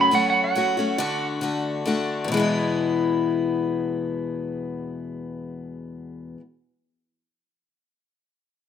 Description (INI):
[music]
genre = rock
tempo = 139 BPM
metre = 3/4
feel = straight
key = E mixolydian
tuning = A4 = 442 Hz
[part]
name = pedal steel guitar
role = melody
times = 0.0-1.3 s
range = F#5 to B5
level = -21 LUFS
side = right 4 dB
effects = plate reverb, tape echo
[part]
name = picked steel-string acoustic guitar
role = accompaniment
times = 0.0-6.4 s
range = E2 to F#4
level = -24 LUFS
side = left 4 dB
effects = none
[sound]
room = wet studio reverb, RT60 0.6 s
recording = rough home demo mix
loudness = -22 LUFS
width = side -8 dB against mid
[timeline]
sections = 0.0-2.3 A section; 2.3-4.9 B section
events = pedal steel guitar solo 0.0-2.3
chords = 0.0 F#m; 1.0 D; 2.3 E